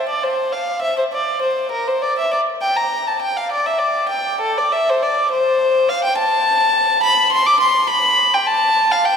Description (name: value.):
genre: classical, baroque-style suite movement for unaccompanied violin.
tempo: 103 BPM.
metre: 3/4.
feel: rubato.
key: unclear.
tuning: A4 = 440 Hz.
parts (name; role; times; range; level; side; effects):
warm violin; solo; 0.0-9.2 s; A4 to D6; -15 LUFS; left 1 dB; none.
room: wet cathedral reverb, RT60 5.2 s.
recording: recorded in a church or concert hall.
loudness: -15 LUFS.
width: side -6 dB against mid.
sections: 0.0-9.2 A section.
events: none.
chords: none.